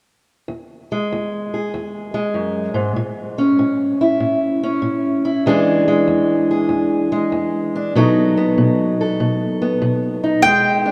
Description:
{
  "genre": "acoustic country blues, solo or duo",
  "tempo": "96 BPM",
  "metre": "4/4",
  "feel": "swing 67% on 8ths",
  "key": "E mixolydian",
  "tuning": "A4 = 441 Hz",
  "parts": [
    { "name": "fingerpicked steel-string acoustic guitar", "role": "accompaniment", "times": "0.5-10.9 s", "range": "E2 to A4", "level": "-18 LUFS", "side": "equal", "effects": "none" },
    { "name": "mandolin", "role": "melody", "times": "10.4-10.9 s", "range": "G5", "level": "-15 LUFS", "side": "equal", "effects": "none" }
  ],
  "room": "wet cathedral reverb, RT60 5.2 s",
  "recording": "in a vast, echoing space",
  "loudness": "-18 LUFS",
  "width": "mono",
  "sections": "0.5-10.4 A section",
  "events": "none",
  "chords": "0.5 E; 3.0 A; 5.5 E7; 7.9 B7"
}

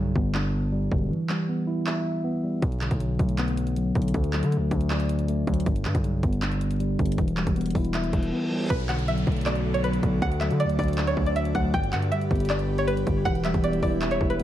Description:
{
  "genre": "hip hop, trap",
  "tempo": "158 BPM",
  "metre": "4/4",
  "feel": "half-time",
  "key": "B minor",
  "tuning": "A4 = 440 Hz",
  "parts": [
    { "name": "mellow tine electric piano", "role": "accompaniment", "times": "0.0-14.4 s", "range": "G2 to E5", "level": "-26 LUFS", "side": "equal", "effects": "wide subtle chorus, low-pass filter" },
    { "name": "distorted 808-style bass", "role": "bass", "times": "0.0-14.4 s", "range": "E1 to D3", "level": "-29 LUFS", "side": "equal", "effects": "distortion" },
    { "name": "trap drum kit", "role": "drums", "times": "0.2-14.4 s", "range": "crash cymbal, handclaps, hi-hat, kick drum", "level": "-29 LUFS", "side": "equal", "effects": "overdrive" },
    { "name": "reverse cymbal and downlifter", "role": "sound effects", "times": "8.1-11.7 s", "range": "none", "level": "-39 LUFS", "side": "right 1 dB", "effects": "none" },
    { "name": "string-like resonator pluck", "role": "melody", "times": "8.7-14.4 s", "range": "B4 to G5", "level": "-29 LUFS", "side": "right 1 dB", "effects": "chorus, low-pass filter, ping-pong delay" },
    { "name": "airy breathy pad", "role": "sustained chords", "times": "9.0-14.4 s", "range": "D3 to D5", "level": "-32 LUFS", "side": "equal", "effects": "chorus" }
  ],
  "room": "moderate plate reverb, RT60 1.1 s, digital ambience",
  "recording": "dreamy mix soaked in reverb, vinyl crackle",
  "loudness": "-23 LUFS",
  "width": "side -12 dB against mid",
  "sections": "0.0-8.7 A section; 8.7-14.4 B section",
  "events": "break 0.0-2.6; reverse cymbal 8.1-8.7; silent gap 8.3-8.7",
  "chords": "0.0 G; 1.1 Em; 2.6 Bm7; 4.1 D; 5.7 G; 7.2 Em; 8.7 Bm7; 10.2 D; 11.7 G; 13.3 Em"
}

